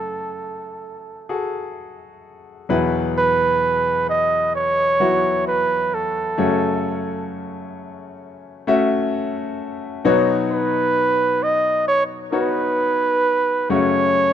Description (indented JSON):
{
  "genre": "pop",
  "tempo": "65 BPM",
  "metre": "4/4",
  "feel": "straight",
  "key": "unclear",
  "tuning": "A4 = 440 Hz",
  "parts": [
    { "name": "warm flugelhorn", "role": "melody", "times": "0.0-14.3 s", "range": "A4 to D#5", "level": "-18 LUFS", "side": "right 2 dB", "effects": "none" },
    { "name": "clear concert grand piano", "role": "accompaniment", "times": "0.0-14.3 s", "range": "E2 to E5", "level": "-22 LUFS", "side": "left 3 dB", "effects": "none" }
  ],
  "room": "light reverb, small room reverb",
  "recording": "rough home demo mix",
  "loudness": "-17 LUFS",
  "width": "side -9 dB against mid",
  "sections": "0.0-2.7 A section; 2.7-14.3 B section",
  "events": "none",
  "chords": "0.0 F#madd9; 2.7 Esus2; 6.4 F#m; 10.0 Badd9; 13.7 F#m"
}